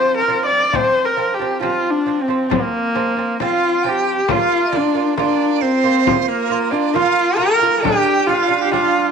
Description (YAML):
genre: mongolian traditional, Mongolian folk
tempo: 68 BPM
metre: 4/4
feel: straight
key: Bb gong mode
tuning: A4 = 440 Hz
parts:
  - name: rich horsehead fiddle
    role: melody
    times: 0.0-9.1 s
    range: Bb3 to D5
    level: -16 LUFS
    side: left 2 dB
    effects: none
  - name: lute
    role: arpeggios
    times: 0.0-9.1 s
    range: F3 to F4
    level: -22 LUFS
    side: right 10 dB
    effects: none
  - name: frame drum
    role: percussion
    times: 0.7-8.9 s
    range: none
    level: -24 LUFS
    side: left 11 dB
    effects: none
  - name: breathy dizi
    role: second line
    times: 3.4-9.1 s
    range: Bb4 to Bb5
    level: -21 LUFS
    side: right 12 dB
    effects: none
room: wet spring reverb, RT60 1.5 s, studio ambience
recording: 1960s-style stereo with parts hard left and right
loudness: -14 LUFS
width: side -6 dB against mid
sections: 0.0-4.3 A section; 4.3-9.1 B section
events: none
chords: 0.0 F5; 4.3 Bb5; 7.8 G5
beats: | 0.75 1.64 2.52 3.41 | 4.30 5.18 6.07 6.96 | 7.84 8.73